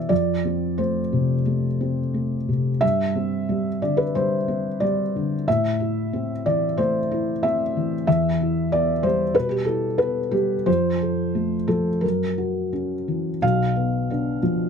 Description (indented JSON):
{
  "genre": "neoclassical minimalist piano",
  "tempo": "90 BPM",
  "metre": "4/4",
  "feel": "uneven beats, rubato",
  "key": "A minor",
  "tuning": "A4 = 440 Hz",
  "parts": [
    { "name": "felt-muted upright piano", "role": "solo", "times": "0.0-14.7 s", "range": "B1 to F5", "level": "-20 LUFS", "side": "equal", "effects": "none" }
  ],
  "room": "little or no reverb",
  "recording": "close, detailed microphones",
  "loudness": "-20 LUFS",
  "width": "side -6 dB against mid",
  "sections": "0.0-13.4 A section; 13.4-14.7 B section",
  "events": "none",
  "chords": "0.1 F; 2.8 Gsus4; 5.5 Am; 8.1 Em; 10.7 F; 12.0 F#7; 13.4 Bdim"
}